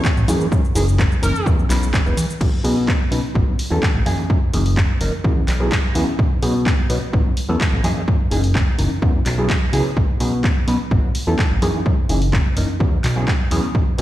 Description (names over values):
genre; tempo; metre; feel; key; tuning
filtered disco house; 127 BPM; 4/4; straight; B major; A4 = 436 Hz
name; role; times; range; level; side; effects
overdriven reed electric piano; accompaniment; 0.0-14.0 s; E3 to B4; -24 LUFS; equal; fast tremolo, phaser, sidechain pumping, low-pass filter
electronic kick drum; drums; 0.0-13.8 s; none; -19 LUFS; equal; overdrive
punchy analog drum machine; drums; 0.0-14.0 s; cabasa, crash cymbal, handclaps, hi-hat; -27 LUFS; equal; sidechain pumping on hats, sidechain pumping on perc, sidechain pumping on cymbals
fat analog bass; bass; 0.2-14.0 s; E1 to B2; -20 LUFS; equal; sidechain pumping, low-pass filter
bright horn section; melody; 1.2-1.5 s; A#4; -29 LUFS; right 1 dB; sidechain pumping, low-pass filter, dub echo
room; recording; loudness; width
light reverb; played on a big sound system in a bare room, large studio reverb; -16 LUFS; side -14 dB against mid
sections
0.0-2.4 A section; 2.4-14.0 B section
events
drop 0.0-2.4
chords
0.3 F#13; 1.5 Esus2; 2.4 Badd9; 3.4 A6; 4.1 F#13; 5.2 E69; 6.2 Badd9; 7.1 A6; 7.8 F#13; 9.0 E69; 10.0 Badd9; 10.9 A6; 11.6 F#13; 12.8 E69